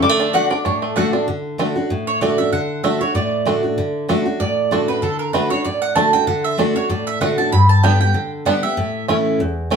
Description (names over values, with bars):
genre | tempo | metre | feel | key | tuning
bluegrass | 192 BPM | 4/4 | swing 55% on 8ths | D major | A4 = 440 Hz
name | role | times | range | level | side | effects
bluegrass banjo | melody | 0.0-9.8 s | G3 to E4 | -21 LUFS | right 4 dB | none
mandolin | melody | 0.0-0.8 s | C#5 to D6 | -19 LUFS | left 3 dB | none
picked steel-string acoustic guitar | accompaniment | 0.0-9.8 s | E2 to G4 | -18 LUFS | left 1 dB | none
mandolin | stabs | 0.3-9.1 s | A3 to B5 | -20 LUFS | right 5 dB | none
room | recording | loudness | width
wet studio reverb, RT60 0.6 s | band playing live in one room | -16 LUFS | side -6 dB against mid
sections
0.0-1.3 A section; 1.3-9.8 B section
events
mandolin solo 1.3-9.8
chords
0.0 D; 7.5 G; 8.8 A